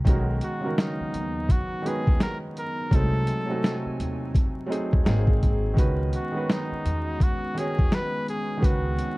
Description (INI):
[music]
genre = lo-fi hip hop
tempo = 84 BPM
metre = 4/4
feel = swing 61% on 16ths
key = unclear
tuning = A4 = 440 Hz
[part]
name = felt-muted upright piano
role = accompaniment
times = 0.0-9.2 s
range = C#3 to C#5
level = -30 LUFS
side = right 1 dB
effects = cassette tape, low-pass filter
[part]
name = hollow soft pad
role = sustained chords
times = 0.0-9.2 s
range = B#2 to G#5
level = -35 LUFS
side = equal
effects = chorus, low-pass filter
[part]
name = upright bass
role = bass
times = 0.0-9.0 s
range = G#1 to E2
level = -27 LUFS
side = equal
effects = none
[part]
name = boom bap sampler-style drum kit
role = drums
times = 0.1-9.2 s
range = hi-hat, kick drum, snare drum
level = -22 LUFS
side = equal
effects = none
[part]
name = breathy flugelhorn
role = melody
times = 0.4-9.2 s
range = D#4 to B4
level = -32 LUFS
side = equal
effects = low-pass filter
[part]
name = vibraphone with medium mallets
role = second line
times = 4.9-5.7 s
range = G#4 to B#4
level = -36 LUFS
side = left 4 dB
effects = low-pass filter, analog delay
[sound]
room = light reverb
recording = dark, warm production, vinyl crackle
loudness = -22 LUFS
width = side -21 dB against mid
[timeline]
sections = 0.1-9.2 A section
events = none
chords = 0.1 Bmaj7; 2.9 G#7b9/B#; 5.1 G#7; 5.8 C#m11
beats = | 0.06 0.77 1.48 2.20 | 2.91 3.63 4.34 5.06 | 5.77 6.48 7.20 7.91 | 8.63